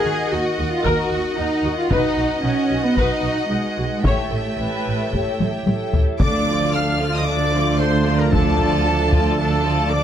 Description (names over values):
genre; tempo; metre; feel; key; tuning
cinematic, epic orchestral film score; 113 BPM; 4/4; straight; D minor from 6.2 s; A4 = 440 Hz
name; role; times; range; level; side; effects
clear symphonic violin section; melody; 0.0-10.0 s; Gb5 to F6; -28 LUFS; left 3 dB; none
rich chamber violin section; second line; 0.0-10.0 s; D4 to E5; -28 LUFS; left 2 dB; none
warm symphonic viola section; accompaniment; 0.0-10.0 s; F3 to C#5; -28 LUFS; right 1 dB; none
pipe organ, stopped flute; sustained chords; 0.0-10.0 s; D4 to Gb5; -28 LUFS; left 1 dB; none
rich symphonic cello section; bass; 0.0-10.0 s; D3 to Ab4; -24 LUFS; right 1 dB; none
warm symphonic double bass section; bass; 0.1-10.0 s; A1 to Eb2; -25 LUFS; right 2 dB; none
dark French horn section; sustained chords; 0.8-10.0 s; A3 to C#5; -30 LUFS; left 5 dB; none
taiko ensemble; drums; 0.8-9.4 s; none; -21 LUFS; left 1 dB; none
mellow trombone section; sustained chords; 6.2-10.0 s; D3 to F3; -28 LUFS; right 4 dB; none
bright trumpet section; stabs; 6.2-10.0 s; A4 to F5; -24 LUFS; right 2 dB; none
mellow tuba; bass; 6.2-10.0 s; D2; -26 LUFS; right 3 dB; none
timpani; percussion; 6.2-7.0 s; D3; -30 LUFS; left 2 dB; none
room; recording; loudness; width
moderate recital hall reverb, RT60 1.4 s; none; -17 LUFS; side -9 dB against mid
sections
0.0-6.2 A section; 6.2-10.0 B section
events
drum fill 5.4-6.2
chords
0.0 Ebm; 1.9 B; 4.0 A7; 6.2 Dm